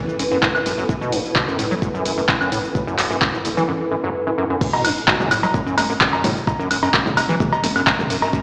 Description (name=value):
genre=acid house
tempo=129 BPM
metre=4/4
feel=straight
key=F# minor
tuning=A4 = 440 Hz
part: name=granular cloud pad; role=texture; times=0.0-3.7 s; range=E4 to B4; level=-28 LUFS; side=equal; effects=built-in reverb, sidechain pumping
part: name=punchy analog drum machine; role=drums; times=0.1-8.4 s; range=cowbell, crash cymbal, handclaps, hi-hat, shaker, snare drum, toms, woodblock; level=-22 LUFS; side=equal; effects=none
part: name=acid bass, square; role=riff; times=0.2-8.4 s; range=F#1 to F#3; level=-25 LUFS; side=equal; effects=overdrive, analog chorus, sidechain pumping, analog delay
part: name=warm sub bass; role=bass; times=0.2-8.3 s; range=F#1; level=-36 LUFS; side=equal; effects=sidechain pumping
part: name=electronic kick drum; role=drums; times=0.4-8.4 s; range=none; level=-25 LUFS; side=equal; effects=overdrive
room=wet lush hall reverb, RT60 1.9 s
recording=played on a big sound system in a bare room, large studio reverb, small speaker sound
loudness=-19 LUFS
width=mono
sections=0.0-4.6 A section; 4.6-8.4 B section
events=drop 4.6-8.4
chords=0.0 F#m; 4.6 N.C.